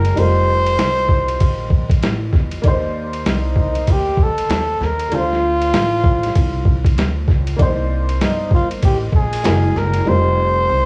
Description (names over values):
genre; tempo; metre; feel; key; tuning
hip hop, jazz-hop; 97 BPM; 4/4; swing 63% on 16ths; C dorian; A4 = 439 Hz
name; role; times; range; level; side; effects
trumpet with bucket mute; melody; 0.0-10.9 s; Eb4 to C5; -21 LUFS; equal; none
dark upright piano; accompaniment; 0.0-10.9 s; G3 to D5; -27 LUFS; equal; none
upright bass; bass; 0.0-10.9 s; F1 to E2; -23 LUFS; equal; none
boom bap sampler-style drum kit; drums; 0.0-10.0 s; hi-hat, kick drum, ride cymbal, snare drum; -20 LUFS; equal; vintage 12-bit sampler grit
room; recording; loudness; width
small room ambience; dry, gritty hardware recording, transformer saturation; -17 LUFS; mono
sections
0.0-10.9 A section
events
none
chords
0.2 F9sus4; 2.6 Cm9; 5.1 Dm7; 7.6 Cm9; 9.4 F#9; 10.1 F9sus4